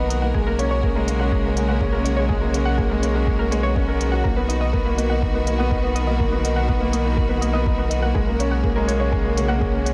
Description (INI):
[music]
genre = piano and strings electronica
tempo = 123 BPM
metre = 4/4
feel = straight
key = B major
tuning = A4 = 440 Hz
[part]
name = clear studio string section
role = sustained chords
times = 0.0-9.9 s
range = C#3 to A#4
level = -31 LUFS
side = equal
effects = sidechain pumping, shimmer reverb
[part]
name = warbly dusty pluck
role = arpeggios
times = 0.0-9.9 s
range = G#4 to F#5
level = -31 LUFS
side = equal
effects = chorus, sidechain pumping, delay, shimmer reverb
[part]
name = warm upright piano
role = riff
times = 0.0-9.9 s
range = G#3 to A#4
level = -26 LUFS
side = equal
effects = delay, shimmer reverb
[part]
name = round analog bass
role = bass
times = 0.0-9.9 s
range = B1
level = -25 LUFS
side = equal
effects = tube saturation, sidechain pumping
[part]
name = electronic hi-hat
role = drums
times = 0.1-9.9 s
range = none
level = -35 LUFS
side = equal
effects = studio reverb
[part]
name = electronic kick drum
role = drums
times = 0.3-9.7 s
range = none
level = -26 LUFS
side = equal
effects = studio reverb
[part]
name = swell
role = sound effects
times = 3.6-4.2 s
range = none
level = -39 LUFS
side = equal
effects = none
[sound]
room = light reverb, digital ambience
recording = none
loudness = -21 LUFS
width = mono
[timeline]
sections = 0.0-9.9 A section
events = none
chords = 0.3 F#add9/B; 4.2 Bmaj7; 8.2 F#add9/B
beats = | 0.35 0.83 1.32 1.81 | 2.30 2.79 3.27 3.76 | 4.25 4.74 5.22 5.71 | 6.20 6.69 7.18 7.66 | 8.15 8.64 9.13 9.62